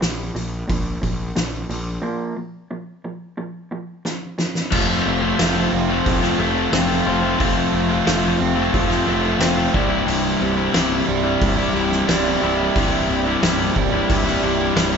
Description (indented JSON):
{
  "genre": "quiet-loud alternative rock",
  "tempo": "90 BPM",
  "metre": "4/4",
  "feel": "straight",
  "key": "unclear",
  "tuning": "A4 = 439 Hz",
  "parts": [
    { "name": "electric guitar through a small old amp", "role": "arpeggios", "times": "0.0-15.0 s", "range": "C2 to F4", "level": "-24 LUFS", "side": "right 1 dB", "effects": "none" },
    { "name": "fuzz picked electric bass", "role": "bass", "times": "0.0-15.0 s", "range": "C1 to Bb1", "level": "-26 LUFS", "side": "equal", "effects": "overdrive" },
    { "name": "oversized low-tuned drum kit", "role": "drums", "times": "0.0-14.9 s", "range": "crash cymbal, hi-hat, kick drum, snare drum", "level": "-24 LUFS", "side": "equal", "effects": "none" },
    { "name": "crunchy overdriven guitar", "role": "riff", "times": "4.7-15.0 s", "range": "C2 to F4", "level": "-23 LUFS", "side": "right 7 dB", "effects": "none" },
    { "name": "overdriven electric guitar", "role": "riff", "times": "4.7-15.0 s", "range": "C2 to F4", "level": "-21 LUFS", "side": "left 8 dB", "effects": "none" }
  ],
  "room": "light reverb",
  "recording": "band playing live in one room, nothing above 7.7 kHz",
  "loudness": "-17 LUFS",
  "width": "side -6 dB against mid",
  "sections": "0.0-4.7 A section; 4.7-15.0 B section",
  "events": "break 2.0-4.7; drum fill 4.0-4.7",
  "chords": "0.0 Bb5; 4.7 F; 9.7 C"
}